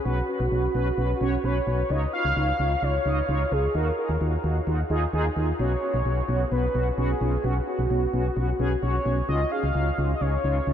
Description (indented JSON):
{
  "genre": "synth-pop",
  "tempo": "130 BPM",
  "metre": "4/4",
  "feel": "straight",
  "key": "unclear",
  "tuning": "A4 = 441 Hz",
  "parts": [
    { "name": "warm velvety synth lead", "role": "melody", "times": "0.0-10.7 s", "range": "F#4 to F5", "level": "-28 LUFS", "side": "equal", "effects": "chorus, analog delay" },
    { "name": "mellow synth brass", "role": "accompaniment", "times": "0.1-10.7 s", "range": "B3 to Eb5", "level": "-29 LUFS", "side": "equal", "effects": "chorus" },
    { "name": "solid FM bass", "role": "bass", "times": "0.1-10.7 s", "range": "B1 to Eb2", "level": "-25 LUFS", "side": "equal", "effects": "none" }
  ],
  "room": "moderate huge ambient reverb, RT60 8.0 s",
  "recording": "dreamy mix soaked in reverb, nothing above 10.4 kHz",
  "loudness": "-22 LUFS",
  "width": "side -9 dB against mid",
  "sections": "0.0-10.7 A section",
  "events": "none",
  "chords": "0.0 Bsus2; 1.9 Dbadd9; 3.7 Ebmadd9; 5.6 Bsus2; 9.3 Dbadd9"
}